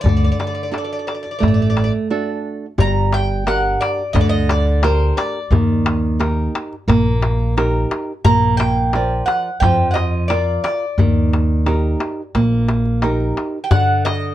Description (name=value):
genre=greek folk, Greek bouzouki band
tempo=88 BPM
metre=4/4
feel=straight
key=unclear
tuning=A4 = 438 Hz
part: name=Greek bouzouki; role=melody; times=0.0-14.3 s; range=C5 to Bb5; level=-21 LUFS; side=right 1 dB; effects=none
part: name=flamenco guitar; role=accompaniment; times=0.0-14.3 s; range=D3 to D5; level=-22 LUFS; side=right 4 dB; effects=none
part: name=upright bass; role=bass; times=0.0-13.3 s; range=G1 to F2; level=-18 LUFS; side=equal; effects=none
part: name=darbuka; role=percussion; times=0.1-14.2 s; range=none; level=-19 LUFS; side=left 3 dB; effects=none
room=moderate small room reverb, RT60 0.6 s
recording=dark, warm production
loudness=-15 LUFS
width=side -13 dB against mid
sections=0.0-2.8 A section; 2.8-13.7 B section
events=break 2.1-2.8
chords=0.0 D; 2.8 Gm; 5.5 Eb; 8.2 Bb; 11.0 Eb; 13.7 D